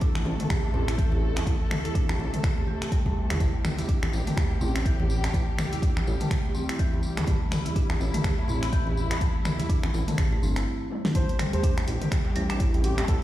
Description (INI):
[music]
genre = afro house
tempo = 124 BPM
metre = 4/4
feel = swing 58% on 16ths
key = A minor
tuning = A4 = 441 Hz
[part]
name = warm studio string section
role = sustained chords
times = 0.0-13.2 s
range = C3 to A4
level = -36 LUFS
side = left 2 dB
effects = sidechain pumping
[part]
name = marimba with medium hard mallets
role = arpeggios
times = 0.0-13.2 s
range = E3 to G4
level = -34 LUFS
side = right 1 dB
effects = sidechain pumping, tape echo
[part]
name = deep house drum kit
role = drums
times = 0.0-13.2 s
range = finger snaps, hi-hat, snare drum, toms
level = -31 LUFS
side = equal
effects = none
[part]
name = electronic kick drum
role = drums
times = 0.0-13.2 s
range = none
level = -25 LUFS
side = equal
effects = none
[part]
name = congas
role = percussion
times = 0.2-10.5 s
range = none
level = -36 LUFS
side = left 2 dB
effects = none
[part]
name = djembe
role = percussion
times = 0.2-13.1 s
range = none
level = -34 LUFS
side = right 3 dB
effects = none
[part]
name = dark detuned saw bass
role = bass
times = 0.3-13.2 s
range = G1 to A1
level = -28 LUFS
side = equal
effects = sidechain pumping
[part]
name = tambourine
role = percussion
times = 3.4-10.6 s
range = none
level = -46 LUFS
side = left 2 dB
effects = none
[part]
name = expressive synth lead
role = melody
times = 11.2-13.2 s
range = G4 to C5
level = -34 LUFS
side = left 1 dB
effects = chorus, cassette tape, tape echo
[sound]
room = small room ambience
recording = played on a big sound system in a bare room, stone room reverb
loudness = -23 LUFS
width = side -14 dB against mid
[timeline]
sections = 0.0-11.1 A section; 11.1-13.2 B section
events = stop 10.7-11.1; drum fill 10.9; drop 11.1-13.2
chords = 0.0 Am7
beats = 0.02 0.50 0.99 | 1.47 1.96 2.44 2.92 | 3.41 3.89 4.38 4.86 | 5.34 5.83 6.31 6.79 | 7.28 7.76 8.25 8.73 | 9.21 9.70 10.18 10.66 | 11.15 11.63 12.12 12.60 | 13.09